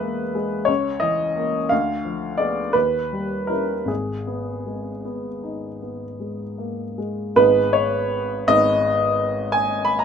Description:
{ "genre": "classical, romantic nocturne for solo piano", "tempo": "49-61 BPM (dotted quarters)", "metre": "9/8", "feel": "rubato", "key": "G# minor", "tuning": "A4 = 440 Hz", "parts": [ { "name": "warm baby grand piano", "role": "solo", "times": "0.0-10.0 s", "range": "G#1 to B5", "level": "-20 LUFS", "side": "equal", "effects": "none" } ], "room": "moderate studio ambience, RT60 0.5 s", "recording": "minimal, uncompressed stereo recording", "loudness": "-19 LUFS", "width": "side -7 dB against mid", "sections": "0.0-7.4 A section; 7.4-10.0 B section", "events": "none", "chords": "0.0 E; 0.7 A#dim/C#; 1.7 Ddim7; 2.7 D#7b9; 3.9 G#m" }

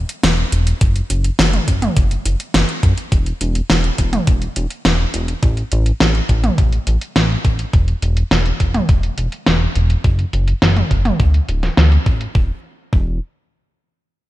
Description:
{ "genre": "synthwave", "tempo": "104 BPM", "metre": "4/4", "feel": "straight", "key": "unclear", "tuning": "A4 = 440 Hz", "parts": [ { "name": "chorused synth bass", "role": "bass", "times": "0.0-13.2 s", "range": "D1 to F#2", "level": "-16 LUFS", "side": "equal", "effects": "sidechain pumping" }, { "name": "pop drum kit", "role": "drums", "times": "0.1-12.3 s", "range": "hi-hat, snare drum, toms", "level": "-18 LUFS", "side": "equal", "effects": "low-pass filter on hats, low-pass filter on snare, low-pass filter on toms" }, { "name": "electronic kick drum", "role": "drums", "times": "0.8-13.0 s", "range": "none", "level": "-16 LUFS", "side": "equal", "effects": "none" } ], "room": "light reverb", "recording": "bright 1980s-style digital production", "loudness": "-14 LUFS", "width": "side -16 dB against mid", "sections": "0.0-12.4 A section; 12.4-14.3 B section", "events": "none", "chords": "none" }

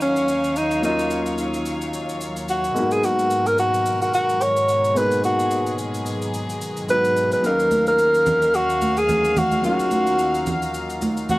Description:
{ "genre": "amapiano", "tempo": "109 BPM", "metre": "4/4", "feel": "swing 55% on 16ths", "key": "Eb minor", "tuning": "A4 = 440 Hz", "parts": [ { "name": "warm alto saxophone", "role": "melody", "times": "0.0-11.4 s", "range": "Db4 to Db5", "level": "-20 LUFS", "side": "equal", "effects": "cassette tape, analog delay" }, { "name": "warm concert grand piano", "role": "accompaniment", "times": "0.0-11.4 s", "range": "Gb3 to F5", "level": "-27 LUFS", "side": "left 2 dB", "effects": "cassette tape" }, { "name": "dark chamber string section", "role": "sustained chords", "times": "0.0-11.4 s", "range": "Eb2 to F5", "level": "-28 LUFS", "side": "equal", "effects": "cassette tape" }, { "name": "shaker", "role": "drums", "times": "0.0-11.4 s", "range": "none", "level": "-37 LUFS", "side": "equal", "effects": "overdrive, cassette tape" }, { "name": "congas", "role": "percussion", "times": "7.7-11.4 s", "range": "none", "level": "-25 LUFS", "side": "right 2 dB", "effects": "none" } ], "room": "moderate booth ambience, RT60 0.2 s", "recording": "home recording on cassette", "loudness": "-18 LUFS", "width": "side -19 dB against mid", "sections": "0.0-11.4 A section", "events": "none", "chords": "0.0 Ebm9; 2.8 Abm7; 7.4 Ebm9" }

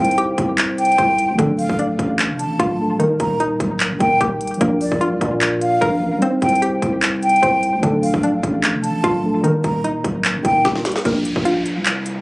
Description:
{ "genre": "hip hop, trap", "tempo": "149 BPM", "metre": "4/4", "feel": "half-time", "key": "Bb major", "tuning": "A4 = 441 Hz", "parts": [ { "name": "breathy concert flute", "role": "second line", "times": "0.0-10.6 s", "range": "D5 to Bb5", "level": "-20 LUFS", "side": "equal", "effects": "tape echo" }, { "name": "muted felt-like synth keys", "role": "accompaniment", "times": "0.0-11.1 s", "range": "F3 to C5", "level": "-22 LUFS", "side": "equal", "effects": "chorus" }, { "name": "hollow square pluck", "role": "arpeggios", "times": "0.0-12.2 s", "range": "D3 to C5", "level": "-22 LUFS", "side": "equal", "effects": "chorus, tape echo" }, { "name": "growling 808-style bass", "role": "bass", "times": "0.0-12.2 s", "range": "D1 to Bb2", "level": "-24 LUFS", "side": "equal", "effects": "none" }, { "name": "trap drum kit", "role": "drums", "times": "0.0-12.2 s", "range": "handclaps, hi-hat, kick drum, snare drum", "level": "-21 LUFS", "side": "equal", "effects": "vintage 12-bit sampler grit" }, { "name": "downlifter", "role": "sound effects", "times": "11.1-12.2 s", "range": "none", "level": "-28 LUFS", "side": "equal", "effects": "none" } ], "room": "light reverb", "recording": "recorded on a phone in the room, club reverb", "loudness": "-15 LUFS", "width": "side -24 dB against mid", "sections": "0.0-11.1 A section; 11.1-12.2 B section", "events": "drum fill 10.6-11.1", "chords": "0.0 Cm; 1.4 Dm; 3.0 Eb; 4.6 Bb; 6.2 Cm; 7.8 Dm; 9.4 Eb; 11.1 Bb5" }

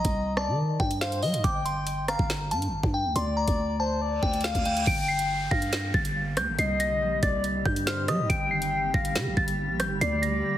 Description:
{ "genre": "hip hop, drill", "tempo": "140 BPM", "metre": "4/4", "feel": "half-time", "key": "G minor", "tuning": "A4 = 440 Hz", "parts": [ { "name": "delicate synth tine bell", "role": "melody", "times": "0.0-10.6 s", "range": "Eb5 to D7", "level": "-29 LUFS", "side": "equal", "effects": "chorus, low-pass filter, digital delay" }, { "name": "breathy flute-like synth lead", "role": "second line", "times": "0.0-10.6 s", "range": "C5 to G5", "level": "-31 LUFS", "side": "left 3 dB", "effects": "chorus, digital delay" }, { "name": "growling 808-style bass", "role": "bass", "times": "0.0-10.4 s", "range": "G1 to G3", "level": "-29 LUFS", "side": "equal", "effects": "none" }, { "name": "drill drum kit", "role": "drums", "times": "0.0-10.3 s", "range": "crash cymbal, hi-hat, kick drum, rim click, snare drum", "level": "-29 LUFS", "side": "equal", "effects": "none" }, { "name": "reverse cymbal and downlifter", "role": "sound effects", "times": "4.2-8.3 s", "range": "none", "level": "-38 LUFS", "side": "right 2 dB", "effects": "none" }, { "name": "granular cloud pad", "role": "sustained chords", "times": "5.9-10.6 s", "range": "D3 to G4", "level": "-34 LUFS", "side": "right 2 dB", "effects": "built-in reverb" } ], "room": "moderate recital hall reverb, RT60 1.5 s", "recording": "heavily compressed radio sound, multiband compression", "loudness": "-24 LUFS", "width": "side -12 dB against mid", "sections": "0.0-4.9 A section; 4.9-10.6 B section", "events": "reverse cymbal 4.2-4.9", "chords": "0.0 Cm; 1.4 Gm; 3.2 D5; 4.9 Gm; 6.6 Cm; 8.3 Gm; 10.0 Dsus4" }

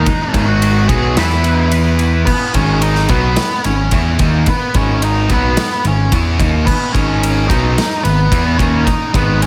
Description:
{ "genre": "quiet-loud alternative rock", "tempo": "109 BPM", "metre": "4/4", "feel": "straight", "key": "G# minor", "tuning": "A4 = 439 Hz", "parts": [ { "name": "octave-fuzz lead guitar", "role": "melody", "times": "0.0-9.5 s", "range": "B3 to G#5", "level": "-21 LUFS", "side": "equal", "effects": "distortion, tape echo" }, { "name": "twelve-string electric guitar", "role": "arpeggios", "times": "0.0-2.3 s", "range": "G#2 to B4", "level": "-26 LUFS", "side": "equal", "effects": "phaser, slapback echo, tape echo" }, { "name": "crunchy overdriven guitar", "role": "riff", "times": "0.0-9.5 s", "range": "G#2 to E4", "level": "-23 LUFS", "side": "equal", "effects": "none" }, { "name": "fuzz guitar", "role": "riff", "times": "0.0-9.5 s", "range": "G#2 to E4", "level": "-22 LUFS", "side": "equal", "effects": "distortion" }, { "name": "overdriven picked electric bass", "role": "bass", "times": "0.0-9.5 s", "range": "G#1 to E2", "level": "-19 LUFS", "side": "equal", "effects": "none" }, { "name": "big rock drum kit", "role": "drums", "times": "0.1-9.5 s", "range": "crash cymbal, kick drum, ride cymbal, snare drum", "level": "-20 LUFS", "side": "equal", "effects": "none" } ], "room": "moderate lush hall reverb, RT60 2.1 s", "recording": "big arena sound", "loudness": "-14 LUFS", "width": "mono", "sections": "0.0-9.5 A section", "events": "none", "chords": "0.0 G#m; 1.2 E5; 2.5 G#m" }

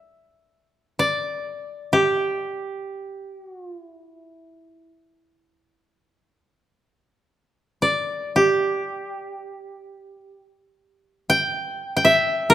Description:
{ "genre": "japanese traditional", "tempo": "free time", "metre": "none", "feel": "none", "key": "unclear", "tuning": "A4 = 440 Hz", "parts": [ { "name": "koto", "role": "solo", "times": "0.0-12.5 s", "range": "G4 to G5", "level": "-20 LUFS", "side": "equal", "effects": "none" } ], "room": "light reverb", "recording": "none", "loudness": "-20 LUFS", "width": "side -12 dB against mid", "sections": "0.0-10.1 A section; 10.1-12.5 A section", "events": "none", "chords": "none" }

